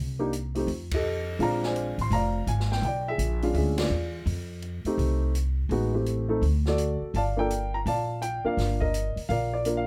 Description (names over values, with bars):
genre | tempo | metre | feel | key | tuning
jazz piano trio | 167 BPM | 4/4 | swing 64% on 8ths | unclear | A4 = 440 Hz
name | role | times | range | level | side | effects
upright bass | bass | 0.0-9.9 s | F1 to F2 | -30 LUFS | equal | none
warm baby grand piano | melody | 0.2-9.9 s | Ab3 to C6 | -30 LUFS | equal | none
open jazz drum kit | drums | 0.3-9.8 s | hi-hat, kick drum, ride cymbal, snare drum | -40 LUFS | equal | none
room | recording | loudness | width
light reverb | none | -27 LUFS | mono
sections
0.0-9.9 A section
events
band accent 0.9, 3.7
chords
0.0 Cm; 0.7 F9; 1.4 Bb9; 2.8 Bdim7; 4.3 F9; 5.7 Am7; 6.4 D; 7.1 Gm7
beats
0.32 0.68 1.04 | 1.40 1.76 2.12 2.47 | 2.83 3.19 3.55 3.91 | 4.27 4.63 4.99 5.34 | 5.70 6.06 6.42 6.78 | 7.14 7.50 7.86 8.22 | 8.58 8.94 9.29 9.65